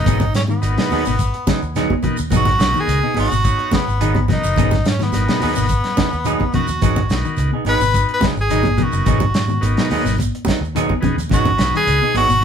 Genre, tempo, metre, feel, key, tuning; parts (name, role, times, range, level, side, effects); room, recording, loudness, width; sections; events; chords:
afrobeat; 107 BPM; 4/4; straight; G# minor; A4 = 439 Hz
edgy tenor saxophone; melody; 0.0-12.4 s; B3 to B4; -20 LUFS; equal
combo organ; accompaniment; 0.0-12.4 s; B3 to C#5; -26 LUFS; left 1 dB
fingered electric bass; bass; 0.0-12.4 s; F#1 to G#2; -20 LUFS; equal
congas; percussion; 0.0-12.3 s; -24 LUFS; right 2 dB
mellow electric guitar; arpeggios; 0.1-12.4 s; B2 to D#3; -25 LUFS; left 5 dB
semi-hollow electric guitar; stabs; 0.1-12.3 s; F#3 to G#4; -24 LUFS; right 5 dB
warm soul drum kit; drums; 0.1-12.3 s; hi-hat, kick drum, snare drum; -21 LUFS; equal
shekere; percussion; 0.1-12.4 s; -30 LUFS; right 5 dB
moderate studio ambience, RT60 0.5 s; band playing live in one room; -15 LUFS; side -8 dB against mid
0.0-12.4 A section
0.0 G#m7